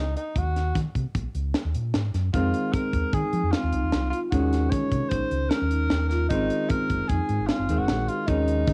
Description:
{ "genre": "progressive instrumental, band music in an uneven meter", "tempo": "152 BPM", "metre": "5/4", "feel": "straight", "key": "Eb dorian", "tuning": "A4 = 440 Hz", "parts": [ { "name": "clear tenor saxophone", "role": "melody", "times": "0.0-8.7 s", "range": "Eb4 to Db5", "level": "-32 LUFS", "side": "equal", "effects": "cassette tape, plate reverb" }, { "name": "fingered electric bass", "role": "bass", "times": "0.0-8.7 s", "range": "Gb1 to F3", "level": "-29 LUFS", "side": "equal", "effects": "none" }, { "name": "tight funk drum kit", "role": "drums", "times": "0.2-8.7 s", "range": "hi-hat, kick drum, snare drum", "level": "-30 LUFS", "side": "equal", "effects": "none" }, { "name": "vintage hollow-body jazz guitar", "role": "accompaniment", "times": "2.3-8.7 s", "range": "Eb3 to Db4", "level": "-33 LUFS", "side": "equal", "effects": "none" }, { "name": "marimba with soft mallets", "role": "arpeggios", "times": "2.3-8.7 s", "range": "C4 to Gb4", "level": "-32 LUFS", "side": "equal", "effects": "plate reverb" } ], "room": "light reverb", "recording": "home recording on cassette", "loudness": "-25 LUFS", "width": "mono", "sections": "0.0-8.7 A section", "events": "none", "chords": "0.4 Ebm7; 2.3 Fm7; 4.3 Ebm7; 6.3 Ab7" }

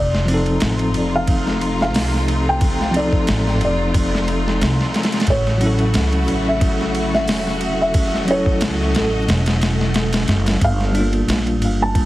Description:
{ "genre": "trip hop", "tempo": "90 BPM", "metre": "4/4", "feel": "swing 54% on 16ths", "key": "unclear", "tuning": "A4 = 440 Hz", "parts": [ { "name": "felt-muted upright piano", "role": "melody", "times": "0.0-12.1 s", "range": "A4 to A5", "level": "-24 LUFS", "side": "equal", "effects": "tape echo" }, { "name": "clear symphonic string section", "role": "sustained chords", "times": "0.0-10.6 s", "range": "C3 to Eb5", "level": "-26 LUFS", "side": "left 1 dB", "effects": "vintage 12-bit sampler grit" }, { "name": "upright bass", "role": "bass", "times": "0.0-12.1 s", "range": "E1 to C#2", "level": "-21 LUFS", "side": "equal", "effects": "tube saturation" }, { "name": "backwards swelling texture", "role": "texture", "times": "1.8-12.1 s", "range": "A3 to A6", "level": "-32 LUFS", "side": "left 1 dB", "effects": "none" }, { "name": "dusty soul sampler-style drum kit", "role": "drums", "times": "0.1-12.1 s", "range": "hi-hat, kick drum, ride cymbal, snare drum", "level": "-21 LUFS", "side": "equal", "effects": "overdrive, small room ambience" }, { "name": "bell-like tine electric piano", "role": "accompaniment", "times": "0.3-12.1 s", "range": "F3 to A4", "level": "-22 LUFS", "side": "left 1 dB", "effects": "tremolo, vintage 12-bit sampler grit, tape echo" } ], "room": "small room reverb", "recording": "heavily compressed radio sound, multiband compression", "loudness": "-16 LUFS", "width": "side -16 dB against mid", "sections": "0.0-10.6 A section; 10.6-12.1 A section", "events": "none", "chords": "0.0 F7; 5.3 A6; 10.6 Gm7" }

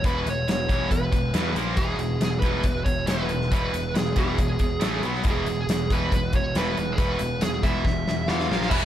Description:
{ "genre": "hard rock", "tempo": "139 BPM", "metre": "4/4", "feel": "straight", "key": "E major", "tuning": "A4 = 439 Hz", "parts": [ { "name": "smooth overdriven lead guitar", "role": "melody", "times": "0.0-8.8 s", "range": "G#4 to F5", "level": "-29 LUFS", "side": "right 2 dB", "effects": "none" }, { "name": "cranked stack guitar", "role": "riff", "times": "0.0-8.8 s", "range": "E2 to B3", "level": "-32 LUFS", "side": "left 9 dB", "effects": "overdrive" }, { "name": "tight distorted guitar", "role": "riff", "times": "0.0-8.8 s", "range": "E2 to B3", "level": "-30 LUFS", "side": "right 7 dB", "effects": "distortion" }, { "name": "fuzz picked electric bass", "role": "bass", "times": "0.0-8.8 s", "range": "E1 to E2", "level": "-29 LUFS", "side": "equal", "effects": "overdrive" }, { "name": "big rock drum kit", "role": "drums", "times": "0.0-8.8 s", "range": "crash cymbal, hi-hat, kick drum, snare drum", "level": "-26 LUFS", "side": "equal", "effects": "none" }, { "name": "octave-fuzz lead guitar", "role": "second line", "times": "8.3-8.8 s", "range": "E4 to F4", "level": "-32 LUFS", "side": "right 3 dB", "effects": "distortion" }, { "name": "tonewheel organ", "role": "sustained chords", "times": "8.7-8.8 s", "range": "E4 to G#5", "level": "-31 LUFS", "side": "left 2 dB", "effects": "slow rotary speaker, overdrive, chorus vibrato" }, { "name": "heavy high-gain guitar", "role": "riff", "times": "8.7-8.8 s", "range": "E3 to E4", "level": "-26 LUFS", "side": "right 1 dB", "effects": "distortion" } ], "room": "small room ambience", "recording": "none", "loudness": "-22 LUFS", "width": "side -11 dB against mid", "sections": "0.0-8.7 A section", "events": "drum fill 7.9-8.7", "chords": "0.0 E5; 1.6 A#5; 1.8 E; 4.8 A5; 5.0 B5; 5.3 E; 8.5 A#5" }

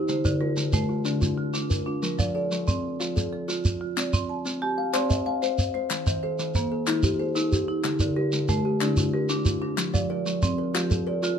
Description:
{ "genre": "southern african traditional, mbira-style interlocking cycle", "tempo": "124 BPM (dotted quarters)", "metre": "12/8", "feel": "straight", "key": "C equiheptatonic", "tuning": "A4 = 441 Hz", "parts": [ { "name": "kalimba", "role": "arpeggios", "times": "0.0-11.4 s", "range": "D3-29c to A5-43c", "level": "-28 LUFS", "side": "left 3 dB", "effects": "none" }, { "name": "marimba with medium hard mallets", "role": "arpeggios", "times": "0.0-11.4 s", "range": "D3-29c to A5-43c", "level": "-28 LUFS", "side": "right 2 dB", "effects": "none" }, { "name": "shekere", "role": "percussion", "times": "0.1-11.4 s", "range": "none", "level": "-26 LUFS", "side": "right 1 dB", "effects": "none" }, { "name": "group handclap", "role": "percussion", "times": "4.0-11.3 s", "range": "none", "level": "-32 LUFS", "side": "left 8 dB", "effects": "none" } ], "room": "moderate studio reverb, RT60 0.6 s", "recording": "none", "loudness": "-23 LUFS", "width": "side -8 dB against mid", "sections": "0.0-4.0 A section; 4.0-11.4 B section", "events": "none", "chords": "0.1 Dm; 2.0 F; 4.0 Cm; 5.9 Eb; 7.8 Dm; 9.8 F" }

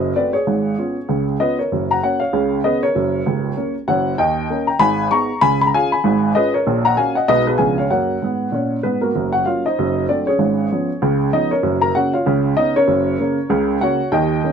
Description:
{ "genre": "jazz, stride piano", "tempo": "193 BPM", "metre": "4/4", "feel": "swing 60% on 8ths", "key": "F# major", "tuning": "A4 = 442 Hz", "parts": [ { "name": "warm upright piano", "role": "solo", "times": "0.0-14.5 s", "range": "C#1 to C#6", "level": "-15 LUFS", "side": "equal", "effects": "none" } ], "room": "light reverb", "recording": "close, detailed microphones", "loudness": "-15 LUFS", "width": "side -7 dB against mid", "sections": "0.0-9.2 A section; 9.2-14.5 A section", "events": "none", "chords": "0.5 C#7/G#; 1.7 F#; 2.3 C#7; 2.9 F#; 4.2 D#7; 4.8 G#m; 5.4 C#; 6.0 C#7/G#; 6.7 F#/A#; 7.3 G#m/B; 7.6 C#7b9; 7.9 F#; 9.8 F#dim7; 10.4 C#7/G#; 11.6 F#; 12.3 C#7; 12.9 F#" }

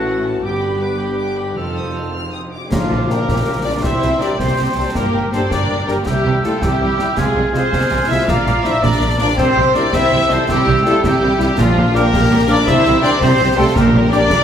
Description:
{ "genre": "cinematic, heroic adventure film score", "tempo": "108 BPM (dotted quarters)", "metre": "12/8", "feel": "straight", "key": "Bb lydian", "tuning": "A4 = 439 Hz", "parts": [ { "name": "warm symphonic violin section", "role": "melody", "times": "0.0-14.4 s", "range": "F4 to F6", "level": "-23 LUFS", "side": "left 6 dB", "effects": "none" }, { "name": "dark symphonic violin section", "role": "second line", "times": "0.0-14.4 s", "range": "D4 to D5", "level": "-25 LUFS", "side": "left 3 dB", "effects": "none" }, { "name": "silver concert flute", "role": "second line", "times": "0.0-14.2 s", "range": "F#5 to F6", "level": "-26 LUFS", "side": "right 1 dB", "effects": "none" }, { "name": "warm oboe", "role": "second line", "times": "0.0-14.2 s", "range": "F#4 to Bb5", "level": "-28 LUFS", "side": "equal", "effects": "none" }, { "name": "rich symphonic viola section", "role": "accompaniment", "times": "0.0-14.4 s", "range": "F3 to F4", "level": "-22 LUFS", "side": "right 1 dB", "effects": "none" }, { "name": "dark French horn section", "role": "sustained chords", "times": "0.0-14.2 s", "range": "D3 to G4", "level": "-23 LUFS", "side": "left 2 dB", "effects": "none" }, { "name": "dark trumpet section", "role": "stabs", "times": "0.0-14.4 s", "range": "F4 to F5", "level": "-21 LUFS", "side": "right 1 dB", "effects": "none" }, { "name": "rich symphonic cello section", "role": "bass", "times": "0.0-14.4 s", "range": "F2 to C3", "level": "-22 LUFS", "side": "right 2 dB", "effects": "none" }, { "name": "rich symphonic double bass section", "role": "bass", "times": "0.0-14.4 s", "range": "F1 to C2", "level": "-22 LUFS", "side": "right 2 dB", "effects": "none" }, { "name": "cymbal swell and tam-tam", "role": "percussion", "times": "0.4-4.2 s", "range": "none", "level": "-30 LUFS", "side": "left 2 dB", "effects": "none" }, { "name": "concert snare drum, clash cymbals and concert bass drum", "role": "drums", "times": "2.7-14.4 s", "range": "none", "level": "-24 LUFS", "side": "equal", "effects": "none" }, { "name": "timpani", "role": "percussion", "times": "2.7-3.2, 11.6-14.3 s", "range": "Bb2", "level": "-23 LUFS", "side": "equal", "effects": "none" } ], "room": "wet recital hall reverb, RT60 1.4 s", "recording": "recorded in a church or concert hall", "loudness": "-13 LUFS", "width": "side -8 dB against mid", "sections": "0.0-2.7 A section; 2.7-14.4 B section", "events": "band accent 2.7-3.1", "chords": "0.4 G; 1.6 F7; 2.7 Bb; 3.8 C; 5.0 Gm; 6.1 C; 7.2 Fm/C; 8.3 Bb; 9.4 C; 11.6 Bb; 12.7 C; 13.8 Gm/Bb" }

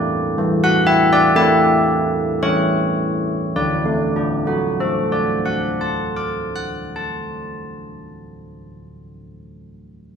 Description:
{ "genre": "classical, tune for church bells", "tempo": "52-63 BPM", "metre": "4/4", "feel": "straight", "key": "D major", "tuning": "A4 = 440 Hz", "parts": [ { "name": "carillon bells", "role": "solo", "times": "0.0-9.5 s", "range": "D3 to F#6", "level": "-17 LUFS", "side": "equal", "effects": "none" } ], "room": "wet recital hall reverb, RT60 1.6 s", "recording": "minimal, uncompressed stereo recording", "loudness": "-16 LUFS", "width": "side -7 dB against mid", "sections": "0.0-3.6 A section; 3.6-8.0 B section", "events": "slowing down 0.0-3.6", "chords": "0.0 A7sus4; 3.6 D" }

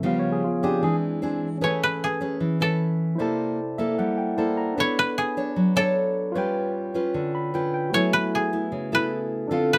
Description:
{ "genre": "bossa nova", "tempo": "152 BPM", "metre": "4/4", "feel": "straight", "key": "A major", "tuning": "A4 = 440 Hz", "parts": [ { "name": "barky tine electric piano", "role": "accompaniment", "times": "0.0-9.8 s", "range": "Db3 to B5", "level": "-30 LUFS", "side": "equal", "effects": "none" }, { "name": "nylon-string guitar", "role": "accompaniment", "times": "0.0-9.8 s", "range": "C3 to C#5", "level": "-27 LUFS", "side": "equal", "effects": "none" }, { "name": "koto", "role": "melody", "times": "1.6-9.8 s", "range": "G#4 to C#5", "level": "-28 LUFS", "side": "equal", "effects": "none" } ], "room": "light reverb", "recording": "none", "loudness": "-25 LUFS", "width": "mono", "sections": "0.0-1.6 A section; 1.6-9.8 A section", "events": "tine electric piano solo 0.0-1.6; koto solo 1.6-9.8; tine electric piano fill 3.6-4.8, 7.1-7.9", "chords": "0.0 Db7#11; 0.8 Eaug7; 1.6 Amaj9; 3.2 C13; 4.8 Bm9; 6.4 G7#11; 7.9 F#m11" }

